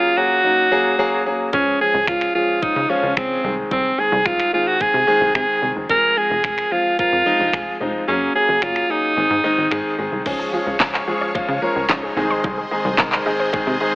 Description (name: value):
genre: dance-pop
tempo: 110 BPM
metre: 4/4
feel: straight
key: Db major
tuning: A4 = 441 Hz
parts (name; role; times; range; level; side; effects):
- edgy alto saxophone; melody; 0.0-10.0 s; C4 to Bb4; -17 LUFS; right 1 dB; none
- clear grand piano; accompaniment; 0.0-13.9 s; Eb3 to Bb4; -22 LUFS; left 1 dB; sidechain pumping
- plucky analog bass; bass; 1.5-13.8 s; F1 to Db3; -27 LUFS; equal; sidechain pumping
- pop drum kit; drums; 1.5-13.7 s; crash cymbal, finger snaps, handclaps, kick drum, snare drum; -22 LUFS; equal; none
- supersaw chords; sustained chords; 10.3-13.9 s; Ab4 to Db6; -26 LUFS; equal; phaser, sidechain pumping
- analog pluck; arpeggios; 10.3-13.9 s; C4 to Db5; -28 LUFS; equal; chorus, sidechain pumping, tape echo
room: light reverb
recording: AM radio sound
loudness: -16 LUFS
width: side -24 dB against mid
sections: 0.0-10.3 A section; 10.3-13.9 B section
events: kick muted 8.1-10.3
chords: 0.0 Gbadd9; 1.5 Db; 3.4 Ab/C; 5.9 Fm; 8.1 Gbadd9; 9.2 Ab; 10.3 Db; 12.2 Ab/C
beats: 0.44 0.99 | 1.53 2.08 2.62 3.17 | 3.71 4.26 4.80 5.35 | 5.90 6.44 6.99 7.53 | 8.08 8.62 9.17 9.71 | 10.26 10.80 11.35 11.90 | 12.44 12.99 13.53